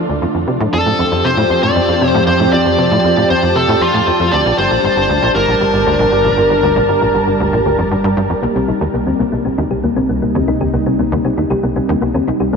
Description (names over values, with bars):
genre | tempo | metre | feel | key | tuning
ambient, sequencer-driven space music | 117 BPM | 4/4 | straight | C dorian | A4 = 442 Hz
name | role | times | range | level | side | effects
lush unison pad | sustained chords | 0.0-12.6 s | C3 to A5 | -17 LUFS | right 1 dB | chorus
tight sequencer bass | riff | 0.0-12.6 s | G1 to C3 | -18 LUFS | equal | ensemble chorus, cassette tape, ping-pong delay
analog drone | bass | 0.9-12.6 s | G1 to F2 | -25 LUFS | equal | chorus
smooth overdriven lead guitar | melody | 0.7-7.9 s | F4 to D5 | -16 LUFS | left 1 dB | ping-pong delay
thumb-piano-like synth pluck | arpeggios | 8.4-12.6 s | A3 to G4 | -18 LUFS | left 3 dB | chorus, auto-pan, ping-pong delay
room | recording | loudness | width
wet huge ambient reverb, RT60 7.9 s | none | -12 LUFS | side -5 dB against mid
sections
0.0-12.6 A section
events
none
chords
0.2 F; 4.3 Gm; 8.4 Cm7